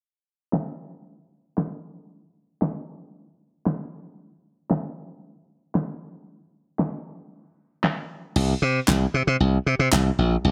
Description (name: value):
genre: dance-pop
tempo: 115 BPM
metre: 4/4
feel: straight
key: unclear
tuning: A4 = 439 Hz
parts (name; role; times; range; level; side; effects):
- deep house drum kit; drums; 0.5-10.0 s; crash cymbal, handclaps, snare drum; -28 LUFS; equal; none
- glassy slap bass; bass; 8.4-10.5 s; Bb1 to C3; -22 LUFS; equal; none
room: light reverb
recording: low-pass filter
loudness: -25 LUFS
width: mono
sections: 0.0-8.4 A section; 8.4-10.5 B section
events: filter sweep 0.0-8.4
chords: none